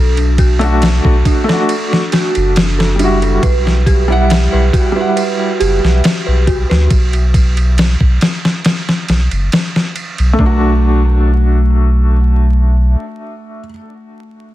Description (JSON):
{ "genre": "trip hop", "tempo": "69 BPM", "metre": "4/4", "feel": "straight", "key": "B minor", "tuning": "A4 = 441 Hz", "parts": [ { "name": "felt-muted upright piano", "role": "accompaniment", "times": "0.0-13.7 s", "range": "G3 to F#5", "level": "-18 LUFS", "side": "equal", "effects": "tremolo, tape echo" }, { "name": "dark detuned synth bell", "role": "arpeggios", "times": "0.0-14.5 s", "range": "A3 to B4", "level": "-20 LUFS", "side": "right 2 dB", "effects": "chorus, phaser, ping-pong delay" }, { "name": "warm sub bass", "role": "bass", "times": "0.0-13.0 s", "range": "F#1 to D2", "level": "-12 LUFS", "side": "equal", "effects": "none" }, { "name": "dusty soul sampler-style drum kit", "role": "drums", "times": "0.2-10.6 s", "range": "kick drum, ride cymbal, snare drum", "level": "-14 LUFS", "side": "equal", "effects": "none" } ], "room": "little or no reverb", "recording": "dense, heavily limited modern master, vinyl crackle", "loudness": "-10 LUFS", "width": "side -15 dB against mid", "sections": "0.0-10.4 A section; 10.4-13.9 B section", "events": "none", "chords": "0.0 Bm7; 3.4 Emadd9; 10.4 Bm7", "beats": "0.82 1.69 2.56 | 3.43 4.29 5.17 6.03 | 6.90 7.77 8.64 9.51 | 10.38 11.25 12.12 12.99" }